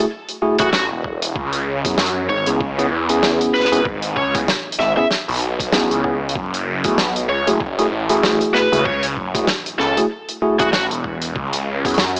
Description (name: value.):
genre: glitch hop.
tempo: 96 BPM.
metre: 4/4.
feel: swing 57% on 16ths.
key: F# minor.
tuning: A4 = 439 Hz.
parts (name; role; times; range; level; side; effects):
tine electric piano; stabs; 0.0-12.0 s; A3 to G#4; -19 LUFS; equal; medium tremolo, sidechain pumping.
big rock drum kit; drums; 0.3-12.2 s; hi-hat, snare drum; -21 LUFS; equal; none.
biting lead guitar; melody; 0.6-10.8 s; F#4 to E5; -21 LUFS; equal; overdrive, vintage 12-bit sampler grit, tape echo.
phased detuned saw bass; bass; 0.6-12.2 s; E1 to F#2; -21 LUFS; equal; phaser, overdrive.
electronic kick drum; drums; 0.6-12.0 s; none; -28 LUFS; equal; none.
room: little or no reverb.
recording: dry, gritty hardware recording, vinyl crackle, small speaker sound.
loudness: -16 LUFS.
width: side -35 dB against mid.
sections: 0.0-12.2 A section.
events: none.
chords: 0.0 F#m9; 1.4 C#m7; 6.4 F#m9; 11.4 C#m7.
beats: 0.10 0.73 | 1.35 1.98 2.60 3.23 | 3.85 4.48 5.11 5.73 | 6.36 6.98 7.61 8.23 | 8.86 9.48 10.11 10.73 | 11.36 11.98.